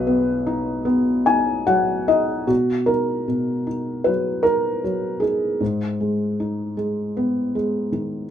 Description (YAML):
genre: classical, lyrical solo piano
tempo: 78 BPM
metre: 4/4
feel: rubato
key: B major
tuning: A4 = 444 Hz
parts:
  - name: felt-muted upright piano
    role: solo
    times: 0.0-8.3 s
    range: B1 to G#5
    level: -19 LUFS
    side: left 1 dB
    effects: none
room: moderate studio reverb, RT60 0.6 s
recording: minimal, uncompressed stereo recording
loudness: -19 LUFS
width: side -9 dB against mid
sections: 0.0-2.5 A section; 2.5-8.3 B section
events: felt piano fill 0.9-2.5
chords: 0.0 B; 5.6 G#m